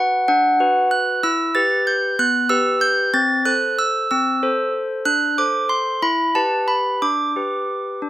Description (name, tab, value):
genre	classical, lullaby for handbells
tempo	62 BPM (dotted quarters)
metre	6/8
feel	straight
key	G major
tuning	A4 = 440 Hz
part	handbells	solo	0.0-8.1 s	B3 to A6	-16 LUFS	equal	slapback echo
room	little or no reverb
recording	recorded outdoors, with no room sound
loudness	-16 LUFS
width	side -14 dB against mid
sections	0.0-8.1 A section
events	none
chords	0.0 Bm/D; 1.2 Em; 3.1 Am/C; 5.1 D5; 6.0 Em; 7.0 G/D